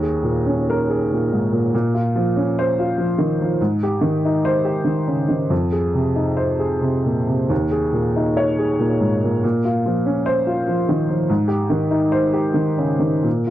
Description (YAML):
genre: neoclassical minimalist piano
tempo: 85-98 BPM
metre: 3/4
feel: rubato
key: Bb dorian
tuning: A4 = 440 Hz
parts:
  - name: clear upright piano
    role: solo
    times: 0.0-13.5 s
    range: Eb2 to Db5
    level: -17 LUFS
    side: equal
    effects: none
room: light reverb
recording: dry, close 1970s-style studio recording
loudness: -17 LUFS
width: side -13 dB against mid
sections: 0.0-13.5 A section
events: none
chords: 0.0 Eb7sus4; 1.7 Bbmadd9; 3.6 Abmaj7; 5.5 Fm7; 7.5 Eb7sus4; 9.4 Bbmadd9; 11.3 Abmaj7